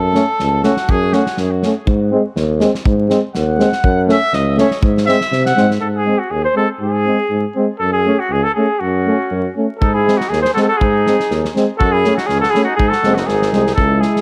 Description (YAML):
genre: balkan folk, Balkan brass band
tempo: 121 BPM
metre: 2/4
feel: swing 54% on 16ths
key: G# phrygian dominant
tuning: A4 = 440 Hz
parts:
  - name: mellow trumpet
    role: second line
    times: 0.0-5.7, 8.8-13.8 s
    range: C#4 to F#5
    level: -23 LUFS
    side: equal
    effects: tape echo
  - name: warm tuba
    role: bass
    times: 0.0-14.0 s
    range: F#1 to B#2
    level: -20 LUFS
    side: equal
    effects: none
  - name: mellow euphonium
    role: accompaniment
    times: 0.1-14.2 s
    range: G#3 to A3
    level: -21 LUFS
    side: equal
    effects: none
  - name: warm trombone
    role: accompaniment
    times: 0.1-14.2 s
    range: B#3 to E4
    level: -23 LUFS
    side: equal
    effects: none
  - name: loose indie drum kit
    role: percussion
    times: 0.1-5.8, 9.8-14.2 s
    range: kick drum, snare drum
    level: -23 LUFS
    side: equal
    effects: none
  - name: clear flugelhorn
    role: melody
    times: 5.8-14.2 s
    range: F#4 to B#4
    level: -19 LUFS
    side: equal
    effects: none
room: moderate spring reverb, RT60 1.2 s, small room ambience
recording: vinyl crackle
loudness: -15 LUFS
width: mono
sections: 0.0-5.8 A section; 5.8-13.8 B section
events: trumpet solo 0.0-5.8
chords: 0.0 F#m; 1.9 G#; 3.8 F#m; 4.8 G#; 7.8 F#m; 9.8 G#; 11.8 F#m; 12.8 G#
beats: 0.40 | 0.89 1.38 | 1.88 2.37 | 2.86 3.35 | 3.85 4.34 | 4.83 5.33 | 5.83 6.32 | 6.82 7.32 | 7.82 8.32 | 8.82 9.32 | 9.82 10.31 | 10.81 11.31 | 11.80 12.30 | 12.79 13.28 | 13.78